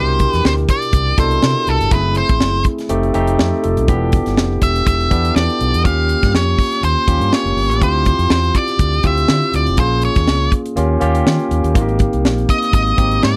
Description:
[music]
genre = polished 1980s jazz-funk pop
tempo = 122 BPM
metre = 4/4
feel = swing 54% on 16ths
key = unclear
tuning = A4 = 444 Hz
[part]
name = octave-fuzz lead guitar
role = melody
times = 0.0-13.4 s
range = A4 to F5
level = -21 LUFS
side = equal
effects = distortion, slapback echo
[part]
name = barky tine electric piano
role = accompaniment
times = 0.0-13.4 s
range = B2 to C5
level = -22 LUFS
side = equal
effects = overdrive, subtle chorus
[part]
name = overdriven fingered electric bass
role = bass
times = 0.0-13.3 s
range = E1 to Eb3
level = -20 LUFS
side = equal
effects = none
[part]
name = crisp fusion drum kit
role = drums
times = 0.2-13.4 s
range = hi-hat, kick drum, snare drum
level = -19 LUFS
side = equal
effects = none
[sound]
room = little or no reverb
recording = dry, close 1970s-style studio recording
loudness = -15 LUFS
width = mono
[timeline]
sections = 0.0-13.4 A section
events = none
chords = 0.0 Cmaj7; 1.9 F#m7b5; 2.9 F9; 3.9 Em7; 5.9 Eb9; 7.8 Dm11; 9.8 Bbm7; 10.8 Eb7; 11.8 Abmaj7

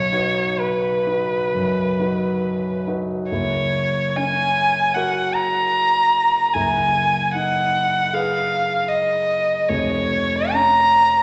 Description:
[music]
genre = classical, romantic duo for violin and grand piano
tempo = 62-79 BPM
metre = 4/4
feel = rubato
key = B major, F# major from 3.3 s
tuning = A4 = 440 Hz
[part]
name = dark violin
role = melody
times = 0.0-11.2 s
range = B4 to A#5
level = -20 LUFS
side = equal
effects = none
[part]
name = warm concert grand piano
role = accompaniment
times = 0.0-11.2 s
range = E#1 to B4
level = -27 LUFS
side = equal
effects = none
[sound]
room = wet scoring stage reverb, RT60 1.6 s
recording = none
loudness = -20 LUFS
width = mono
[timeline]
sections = 0.0-3.3 A section; 3.3-11.2 B section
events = none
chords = 0.0 B; 3.3 F#; 6.5 G#m7/F#; 9.7 C#/E#

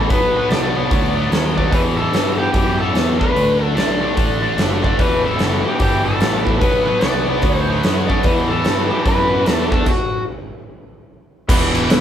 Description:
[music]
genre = blues rock power trio and southern rock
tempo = 148 BPM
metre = 4/4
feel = swing 64% on 8ths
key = E minor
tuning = A4 = 440 Hz
[part]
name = overdriven slide guitar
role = melody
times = 0.0-10.2 s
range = F#4 to D5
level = -20 LUFS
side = left 1 dB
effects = none
[part]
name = tight distorted guitar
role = riff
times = 0.0-12.0 s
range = E2 to D4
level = -20 LUFS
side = left 1 dB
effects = distortion
[part]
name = fuzz picked electric bass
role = bass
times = 0.0-12.0 s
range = E1 to G2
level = -22 LUFS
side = right 1 dB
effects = overdrive
[part]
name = huge arena drum kit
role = drums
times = 0.1-12.0 s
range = crash cymbal, hi-hat, kick drum, snare drum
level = -19 LUFS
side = equal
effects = none
[part]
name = overdriven tonewheel organ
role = sustained chords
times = 5.0-12.0 s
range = B3 to B4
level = -29 LUFS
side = right 3 dB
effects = none
[sound]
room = moderate large studio reverb, RT60 0.9 s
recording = band playing live in one room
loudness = -14 LUFS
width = side -9 dB against mid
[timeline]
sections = 0.0-11.5 A section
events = stop 9.9-11.5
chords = 0.1 Bm; 1.7 Em; 3.2 D; 5.0 Em; 6.6 Bm; 8.2 Em; 9.7 D; 11.5 Em

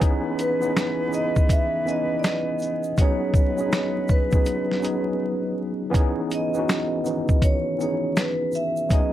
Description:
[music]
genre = lo-fi hip hop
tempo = 81 BPM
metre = 4/4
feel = swing 63% on 16ths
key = C# minor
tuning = A4 = 441 Hz
[part]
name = tine electric piano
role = accompaniment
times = 0.0-9.1 s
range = D#3 to B4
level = -25 LUFS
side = equal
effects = overdrive, fast stereo tremolo, cassette tape
[part]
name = warm woodwind section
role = sustained chords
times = 0.0-5.9 s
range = E3 to B4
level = -35 LUFS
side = equal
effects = none
[part]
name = lo-fi sampler-style drum kit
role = drums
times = 0.0-9.1 s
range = finger snaps, hi-hat, kick drum, shaker, snare drum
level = -20 LUFS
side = equal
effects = none
[part]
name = egg shaker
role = percussion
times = 0.0-9.1 s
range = none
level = -46 LUFS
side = right 6 dB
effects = none
[part]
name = vibraphone with medium hard mallets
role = melody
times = 0.4-9.1 s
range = B4 to E5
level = -26 LUFS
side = right 1 dB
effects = none
[sound]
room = light reverb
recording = vinyl crackle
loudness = -20 LUFS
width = side -12 dB against mid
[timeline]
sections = 0.0-9.1 A section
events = break 5.2-5.9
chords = 0.0 C#m9; 3.0 B69; 5.9 C#m9

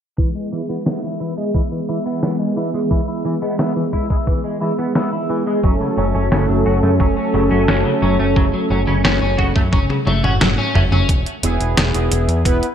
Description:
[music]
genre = synthwave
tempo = 88 BPM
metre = 4/4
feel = straight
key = E major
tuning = A4 = 440 Hz
[part]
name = brassy analog pad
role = sustained chords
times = 0.2-11.1 s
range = E3 to A4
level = -21 LUFS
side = right 1 dB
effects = chorus, sidechain pumping
[part]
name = electric guitar at the edge of break-up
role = arpeggios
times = 0.2-11.1 s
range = C#3 to F#4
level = -23 LUFS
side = left 2 dB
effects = analog chorus, low-pass filter, digital delay
[part]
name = clean electric guitar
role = riff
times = 0.2-11.0 s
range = E3 to F#4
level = -26 LUFS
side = right 3 dB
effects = ensemble chorus, low-pass filter, digital delay
[part]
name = electronic kick drum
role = drums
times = 0.2-12.6 s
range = none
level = -18 LUFS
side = equal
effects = none
[part]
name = detuned 8-bit digital drum machine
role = drums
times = 0.9-12.7 s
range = hi-hat, snare drum, toms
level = -21 LUFS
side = equal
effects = none
[part]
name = deep dub picked electric bass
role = bass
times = 5.6-12.6 s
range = E1 to F#2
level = -19 LUFS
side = equal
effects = tube saturation, sidechain pumping
[part]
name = analog synth brass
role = stabs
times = 11.4-12.7 s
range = B3 to B4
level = -20 LUFS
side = right 1 dB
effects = chorus
[sound]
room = moderate plate reverb, RT60 2.0 s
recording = bright 1980s-style digital production, low-pass filter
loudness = -15 LUFS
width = side -8 dB against mid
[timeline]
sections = 0.2-11.1 A section; 11.1-12.7 B section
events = filter sweep on analog synth pad 0.2-11.1; filter sweep on clean electric guitar 0.2-11.1; filter sweep 0.2-11.1; drum fill 9.7-11.1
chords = 0.2 E; 5.6 F#m; 11.1 E

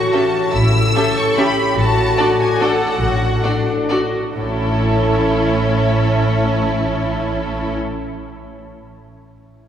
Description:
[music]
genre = classical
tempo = 126-155 BPM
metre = 3/4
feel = rubato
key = A major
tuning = A4 = 444 Hz
[part]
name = warm studio violin section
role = melody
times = 0.0-7.8 s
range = C#5 to E6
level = -24 LUFS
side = left 2 dB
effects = none
[part]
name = concert harp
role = arpeggios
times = 0.0-8.6 s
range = A2 to E5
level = -21 LUFS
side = left 3 dB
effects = none
[part]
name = warm studio cello section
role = bass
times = 0.0-7.8 s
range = A2 to A4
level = -22 LUFS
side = equal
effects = none
[part]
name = rich studio violin section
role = second line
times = 0.1-7.8 s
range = E4 to E5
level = -24 LUFS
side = right 1 dB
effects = none
[part]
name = warm studio viola section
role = accompaniment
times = 0.1-7.8 s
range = C#4 to G4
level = -23 LUFS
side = right 1 dB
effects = none
[part]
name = warm studio double bass section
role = bass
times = 0.5-7.8 s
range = A1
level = -21 LUFS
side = right 2 dB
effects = none
[sound]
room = wet church reverb, RT60 3.8 s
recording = recorded in a church or concert hall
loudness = -14 LUFS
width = side -9 dB against mid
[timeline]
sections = 0.0-4.4 A section; 4.4-7.0 B section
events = slowing down 1.2-4.4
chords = 0.0 A7; 1.8 D/A; 4.4 A

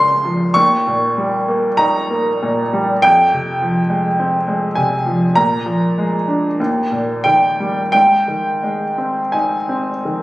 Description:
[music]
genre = classical, romantic nocturne for solo piano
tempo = 42-53 BPM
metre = 4/4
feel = rubato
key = Ab major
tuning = A4 = 440 Hz
[part]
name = bright upright piano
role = solo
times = 0.0-10.2 s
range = Db2 to Db6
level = -14 LUFS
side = equal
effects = none
[sound]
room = wet recital hall reverb, RT60 1.7 s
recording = recorded on a phone in the room, studio reverb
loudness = -14 LUFS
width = side -17 dB against mid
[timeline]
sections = 0.0-10.2 A section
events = none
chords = 0.0 Bbm/Db; 0.6 Eb7; 3.0 Fm; 5.4 Bb7; 6.6 Eb; 7.9 Ab

